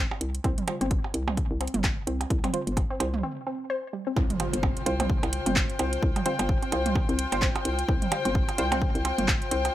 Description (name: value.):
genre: minimal techno.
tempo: 129 BPM.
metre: 4/4.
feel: swing 58% on 16ths.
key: unclear.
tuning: A4 = 444 Hz.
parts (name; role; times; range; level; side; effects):
resonant blip pluck; riff; 0.0-9.5 s; G3 to C5; -34 LUFS; left 1 dB; chorus, sidechain pumping, tape echo.
hollow knocking FM bass; bass; 0.0-9.7 s; G1 to C2; -30 LUFS; equal; sidechain pumping.
electronic percussion blips and toms; percussion; 0.1-9.7 s; none; -32 LUFS; right 4 dB; small room ambience, tape echo.
house drum kit; drums; 0.2-9.7 s; handclaps, hi-hat; -30 LUFS; right 1 dB; small room ambience.
electronic kick drum; drums; 0.4-9.4 s; none; -27 LUFS; equal; small room ambience.
filtered dub chord stab; stabs; 0.7-8.7 s; G3 to C5; -34 LUFS; right 3 dB; chorus, tape echo.
impact; sound effects; 4.2-6.0 s; none; -38 LUFS; equal; none.
warm chamber string section; texture; 4.2-9.7 s; F4 to G5; -31 LUFS; left 3 dB; sidechain pumping.
room: light reverb.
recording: none.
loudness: -24 LUFS.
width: side -13 dB against mid.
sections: 0.0-4.2 A section; 4.2-9.7 B section.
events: break 3.2-4.2; drop 4.2-9.7; impact 4.2-6.0.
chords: 0.0 C5; 4.2 Csus4.